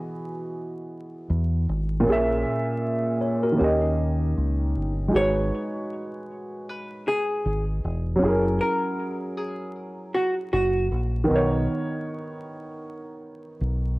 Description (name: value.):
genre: lo-fi hip hop.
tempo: 78 BPM.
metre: 4/4.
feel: swing 58% on 16ths.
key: B major.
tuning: A4 = 441 Hz.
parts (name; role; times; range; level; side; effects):
dark upright piano; accompaniment; 0.0-14.0 s; A#2 to E5; -26 LUFS; right 1 dB; low-pass filter, cassette tape.
deep dub fingered electric bass; bass; 1.3-14.0 s; E1 to E2; -25 LUFS; equal; none.
mellow tine electric piano; second line; 3.2-4.9 s; D#4 to C#5; -29 LUFS; left 2 dB; medium stereo tremolo, low-pass filter, cassette tape, analog delay.
archtop guitar, miked and amplified; melody; 5.2-10.9 s; F#4 to C#5; -26 LUFS; equal; low-pass filter, cassette tape, analog delay.
room: moderate spring reverb, RT60 1.3 s.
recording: home recording on cassette, vinyl crackle.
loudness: -22 LUFS.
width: side -21 dB against mid.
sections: 0.0-14.0 A section.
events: none.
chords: 0.0 Emaj9; 2.1 A#m7b5; 3.6 D#7; 5.1 G#m7; 8.2 F#7; 11.3 Bmaj7.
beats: 0.52 1.28 | 2.05 2.82 3.59 4.36 | 5.13 5.90 6.67 7.44 | 8.21 8.98 9.75 10.52 | 11.28 12.05 12.82 13.59.